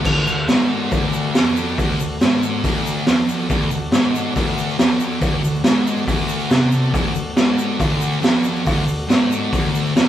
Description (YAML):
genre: garage rock duo or trio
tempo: 139 BPM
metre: 4/4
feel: straight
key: unclear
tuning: A4 = 440 Hz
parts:
  - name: combo organ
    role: sustained chords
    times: 0.0-10.1 s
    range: F#4 to A5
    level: -30 LUFS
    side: left 2 dB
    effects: none
  - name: thick fuzz guitar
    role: riff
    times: 0.0-10.1 s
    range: D2 to C3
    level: -21 LUFS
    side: left 1 dB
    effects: distortion
  - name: raw garage drum kit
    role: drums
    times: 0.0-10.1 s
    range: crash cymbal, hi-hat, kick drum, snare drum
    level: -18 LUFS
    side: right 1 dB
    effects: none
  - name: egg shaker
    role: percussion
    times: 0.1-10.1 s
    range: none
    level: -41 LUFS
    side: left 7 dB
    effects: none
room: moderate studio reverb, RT60 0.8 s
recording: band playing live in one room, lossy compression artefacts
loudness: -16 LUFS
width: side -11 dB against mid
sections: 0.0-10.1 A section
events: transistor combo organ fill 6.1-6.9, 9.7-10.1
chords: 0.0 D